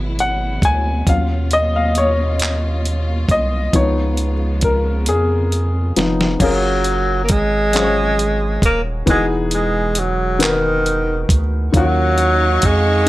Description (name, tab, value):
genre	slow six-eight R&B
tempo	45 BPM (dotted quarters)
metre	6/8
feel	straight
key	F# major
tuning	A4 = 440 Hz
part	dark baby grand piano	accompaniment	0.0-13.1 s	D#3 to G#5	-20 LUFS	left 3 dB	none
part	warm symphonic string section	sustained chords	0.0-6.4, 11.7-13.1 s	B2 to C#6	-27 LUFS	equal	none
part	round analog bass	bass	0.0-13.1 s	D#1 to E#2	-20 LUFS	right 1 dB	none
part	dusty soul sampler-style drum kit	drums	0.2-13.1 s	crash cymbal, handclaps, hi-hat, kick drum, snare drum	-19 LUFS	right 1 dB	none
part	breathy tenor saxophone	melody	6.4-13.1 s	D#3 to A#3	-17 LUFS	right 1 dB	none
room	light reverb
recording	none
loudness	-14 LUFS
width	side -16 dB against mid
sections	0.0-6.4 A section; 6.4-13.1 B section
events	grand piano solo 0.0-6.4; drum fill 5.1-6.4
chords	0.0 Emaj9; 1.1 D#m9; 3.7 C#7; 6.4 F#maj9; 9.1 Emaj9; 11.7 D#m9